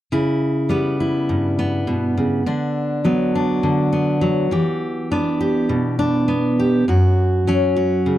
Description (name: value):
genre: folk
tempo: 102 BPM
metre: 4/4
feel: straight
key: unclear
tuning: A4 = 439 Hz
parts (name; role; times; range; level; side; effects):
- fingerpicked steel-string acoustic guitar; accompaniment; 0.1-8.2 s; F#2 to G4; -16 LUFS; equal; none
room: small room ambience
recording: dry, close 1970s-style studio recording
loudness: -17 LUFS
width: side -13 dB against mid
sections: 0.1-8.2 A section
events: none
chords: 0.1 C#m7b5; 2.5 Bm/D; 4.5 Em7; 6.9 F#5